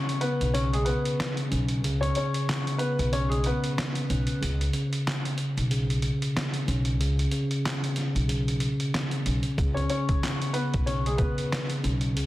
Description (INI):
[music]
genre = hip hop, boom-bap hip-hop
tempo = 93 BPM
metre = 4/4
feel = swing 56% on 16ths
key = unclear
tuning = A4 = 438 Hz
[part]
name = warm upright piano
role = melody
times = 0.0-4.4, 9.7-11.7 s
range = G#3 to C#5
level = -30 LUFS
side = left 2 dB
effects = none
[part]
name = mellow tine electric piano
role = accompaniment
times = 0.0-12.3 s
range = C#3 to C#4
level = -29 LUFS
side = equal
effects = fast stereo tremolo, cassette tape
[part]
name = trip hop sampler-style drum kit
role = drums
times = 0.1-12.3 s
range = handclaps, hi-hat, kick drum, snare drum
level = -31 LUFS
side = equal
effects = none
[part]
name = upright bass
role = bass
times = 0.4-12.3 s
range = B1 to C#2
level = -28 LUFS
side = equal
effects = none
[sound]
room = light reverb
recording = dense, heavily limited modern master, vinyl crackle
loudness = -24 LUFS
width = side -16 dB against mid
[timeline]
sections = 0.0-12.3 A section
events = break 0.0-9.6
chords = 0.0 C#5